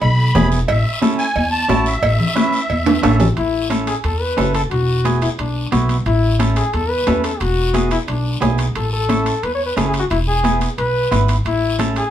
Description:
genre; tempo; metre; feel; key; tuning
latin, cumbia; 178 BPM; 4/4; straight; A major; A4 = 440 Hz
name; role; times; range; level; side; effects
musette accordion; melody; 0.0-3.2 s; E5 to B5; -21 LUFS; equal; none
upright bass; bass; 0.0-12.0 s; E1 to E2; -19 LUFS; equal; none
congas; percussion; 0.0-12.0 s; none; -22 LUFS; left 3 dB; none
cowbell and timbales; percussion; 0.0-12.1 s; none; -23 LUFS; right 4 dB; none
guiro; percussion; 0.0-12.1 s; none; -30 LUFS; left 4 dB; none
clean electric guitar; accompaniment; 0.3-12.0 s; B3 to B4; -21 LUFS; right 4 dB; none
brilliant trombone; second line; 3.4-12.1 s; D4 to C#5; -20 LUFS; left 3 dB; none
room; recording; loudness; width
wet studio reverb, RT60 0.5 s; band playing live in one room; -15 LUFS; side -11 dB against mid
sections
0.0-3.4 A section; 3.4-12.1 B section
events
drum fill 2.9-3.4; trombone solo 3.4-12.1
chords
0.0 E; 0.7 A; 4.7 E7; 6.1 A; 7.4 E7; 8.8 A; 10.1 E; 11.5 A

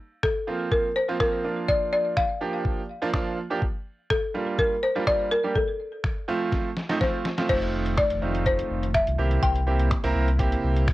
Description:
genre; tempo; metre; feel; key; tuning
dance-pop; 124 BPM; 4/4; straight; unclear; A4 = 440 Hz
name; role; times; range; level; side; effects
folk marimba with hard mallets; melody; 0.2-10.1 s; A4 to G5; -25 LUFS; left 1 dB; tape echo
lo-fi sampler-style drum kit; drums; 0.2-10.9 s; crash cymbal, finger snaps, hi-hat, kick drum, snare drum; -28 LUFS; equal; overdrive, cassette tape
clear baby grand piano; accompaniment; 0.5-10.9 s; F3 to Bb4; -28 LUFS; right 3 dB; sidechain pumping, cassette tape
string machine, cellos; sustained chords; 7.5-10.9 s; C3 to F4; -36 LUFS; left 1 dB; ensemble chorus, sidechain pumping, cassette tape
sub bass with octave; bass; 7.5-10.9 s; F1 to C2; -24 LUFS; equal; sidechain pumping
room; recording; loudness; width
light reverb; home recording on cassette; -22 LUFS; side -17 dB against mid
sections
0.0-7.5 A section; 7.5-10.9 B section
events
drum fill 6.5-7.5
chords
0.0 Fsus4; 1.4 Bb; 3.6 Gm7; 5.6 F7; 9.2 C7

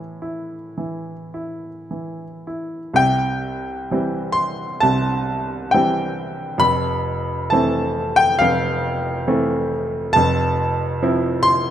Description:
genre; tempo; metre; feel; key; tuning
classical, romantic nocturne for solo piano; 53-70 BPM; 4/4; rubato; C major; A4 = 440 Hz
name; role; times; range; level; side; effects
clear baby grand piano; solo; 0.0-11.7 s; F1 to C6; -18 LUFS; equal; none
room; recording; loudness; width
moderate recital hall reverb, RT60 1.4 s; close, detailed microphones; -17 LUFS; side -10 dB against mid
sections
0.0-3.0 A section; 3.0-11.7 B section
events
none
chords
0.0 A5; 3.0 C; 6.6 Fmaj7

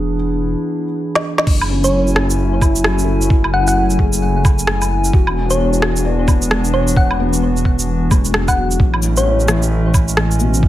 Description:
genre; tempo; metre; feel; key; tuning
future garage; 131 BPM; 4/4; swing 62% on 16ths; F# minor; A4 = 440 Hz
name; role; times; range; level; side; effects
felt-muted upright piano; accompaniment; 0.0-10.7 s; B2 to A4; -23 LUFS; left 4 dB; sidechain pumping, digital delay
warbly tape-like pad; sustained chords; 0.0-10.7 s; E3 to G#5; -22 LUFS; equal; chorus, built-in reverb, sidechain pumping
swelling detuned saw bass; bass; 0.0-10.7 s; E1 to A1; -18 LUFS; equal; tube saturation, sidechain pumping
organic electronic drum kit; drums; 1.2-10.6 s; cabasa, crash cymbal, rim click, shaker, snare drum, woodblock; -19 LUFS; right 1 dB; none
electronic kick drum; drums; 1.5-10.7 s; none; -13 LUFS; equal; none
thumb-piano-like synth pluck; melody; 1.8-9.5 s; C#5 to F#5; -21 LUFS; left 1 dB; chorus, digital delay
room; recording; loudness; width
light reverb; low-pass filter; -13 LUFS; side -14 dB against mid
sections
0.0-1.5 A section; 1.5-10.7 B section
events
filter sweep on ambient pad 0.0-1.5; filter sweep 0.0-1.5; drum fill 1.1-1.5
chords
0.0 E7; 1.5 F#m7; 5.1 E7; 8.8 Amaj7

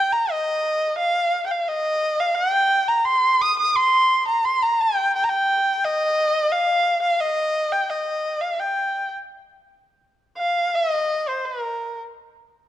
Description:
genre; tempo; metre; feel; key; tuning
chinese traditional; 86 BPM; 2/4; rubato; unclear; A4 = 440 Hz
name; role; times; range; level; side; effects
warm erhu; solo; 0.0-12.0 s; Bb4 to Eb6; -19 LUFS; equal; none
room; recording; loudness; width
moderate recital hall reverb, RT60 1.8 s; dark, warm production; -19 LUFS; side -12 dB against mid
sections
0.0-9.3 A section; 9.3-12.7 B section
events
none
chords
none

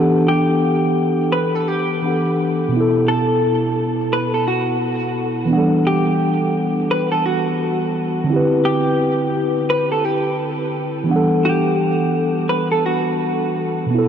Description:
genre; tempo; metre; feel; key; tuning
hip hop; 86 BPM; 4/4; swing 62% on 16ths; E minor; A4 = 440 Hz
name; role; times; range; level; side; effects
mellow tine electric piano; accompaniment; 0.0-14.1 s; B2 to F#5; -17 LUFS; equal; slow stereo tremolo, cassette tape, low-pass filter
vintage hollow-body jazz guitar; melody; 0.3-13.9 s; F#4 to B4; -21 LUFS; equal; analog chorus, low-pass filter, tape echo
room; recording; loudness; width
wet huge ambient reverb, RT60 6.4 s; dreamy mix soaked in reverb; -16 LUFS; side -8 dB against mid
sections
0.0-14.1 A section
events
none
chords
0.0 Em11; 2.7 B7sus4; 5.5 Em11; 8.3 D13sus4; 11.1 Em11

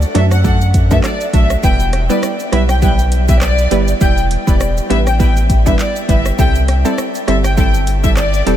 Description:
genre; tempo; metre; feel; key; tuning
dancehall; 101 BPM; 4/4; swing 56% on 16ths; E minor; A4 = 440 Hz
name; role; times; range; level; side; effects
warm sub bass; bass; 0.0-8.6 s; E1 to F#2; -15 LUFS; equal; none
afro-pop drum kit; drums; 0.0-8.6 s; handclaps, hi-hat, kick drum, rim click, shaker; -16 LUFS; equal; none
egg shaker and timbales; percussion; 0.0-8.6 s; none; -29 LUFS; left 4 dB; none
dark studio violin section; melody; 0.1-8.6 s; D5 to G5; -19 LUFS; left 2 dB; tape echo
analog pluck; accompaniment; 0.1-8.6 s; F#3 to B4; -18 LUFS; right 3 dB; chorus, sidechain pumping
room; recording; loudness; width
light reverb; none; -11 LUFS; side -11 dB against mid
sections
0.0-8.6 A section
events
none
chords
0.0 D; 1.6 Em; 6.4 C6

